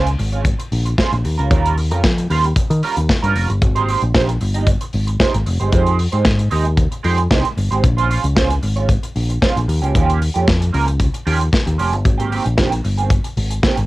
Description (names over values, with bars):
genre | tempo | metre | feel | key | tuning
disco | 114 BPM | 4/4 | straight | Bb dorian | A4 = 440 Hz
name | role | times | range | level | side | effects
clean electric guitar | accompaniment | 0.0-13.8 s | Eb3 to Eb5 | -20 LUFS | right 5 dB | wah, analog chorus, cassette tape
picked electric bass | bass | 0.0-13.9 s | F1 to Eb3 | -18 LUFS | equal | none
modern studio drum kit | drums | 0.1-13.9 s | hi-hat, kick drum, snare drum | -18 LUFS | left 1 dB | none
room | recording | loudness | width
little or no reverb | home recording on cassette | -14 LUFS | side -18 dB against mid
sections
0.0-13.9 A section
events
none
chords
0.0 Bbm9; 1.2 Eb9; 3.6 Abmaj9; 5.5 Fm9; 7.8 Bbm9; 9.7 Eb9; 12.1 Abmaj9